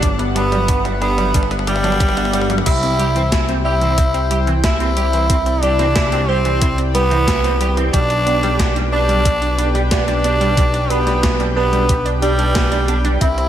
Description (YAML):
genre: synthwave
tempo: 91 BPM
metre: 4/4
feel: straight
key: G major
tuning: A4 = 440 Hz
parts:
  - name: raspy tenor saxophone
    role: melody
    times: 0.0-13.5 s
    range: G3 to E4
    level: -19 LUFS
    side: equal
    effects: digital delay
  - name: chorused pulse-width pad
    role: sustained chords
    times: 0.0-13.5 s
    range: B3 to G5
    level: -25 LUFS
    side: right 1 dB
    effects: sidechain pumping
  - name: analog pluck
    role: arpeggios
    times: 0.0-13.5 s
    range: E3 to G4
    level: -25 LUFS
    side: right 2 dB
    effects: chorus, cassette tape, ping-pong delay
  - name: semi-hollow electric guitar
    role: riff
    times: 0.0-13.3 s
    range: G3 to G4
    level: -27 LUFS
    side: right 4 dB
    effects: ensemble chorus, ping-pong delay
  - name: fat analog bass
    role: bass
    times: 0.0-13.5 s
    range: G1 to C2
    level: -19 LUFS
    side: equal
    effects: tube saturation
  - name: electronic kick drum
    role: drums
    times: 0.0-13.3 s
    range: none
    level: -18 LUFS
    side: equal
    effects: none
  - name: gated 80s digital drum machine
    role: drums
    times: 0.0-13.5 s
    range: crash cymbal, hi-hat, snare drum, toms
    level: -24 LUFS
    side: equal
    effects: gated reverb, gated reverb snare, high-pass filter on hats, high-pass filter on toms, high-pass filter on cymbals, high-pass filter on snare, high-pass filter on room
  - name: FM electric piano with soft pad layer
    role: second line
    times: 2.7-13.5 s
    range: G4 to E5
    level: -26 LUFS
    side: right 1 dB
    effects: none
room: light reverb, digital ambience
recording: none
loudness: -14 LUFS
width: side -10 dB against mid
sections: 0.0-2.7 A section; 2.7-13.5 B section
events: drum fill 0.0-2.7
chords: 0.0 Gmaj7; 2.7 C; 7.9 G/B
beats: | 0.02 0.68 1.34 2.00 | 2.66 3.32 3.98 4.64 | 5.30 5.96 6.62 7.28 | 7.94 8.60 9.26 9.91 | 10.57 11.23 11.89 12.55 | 13.21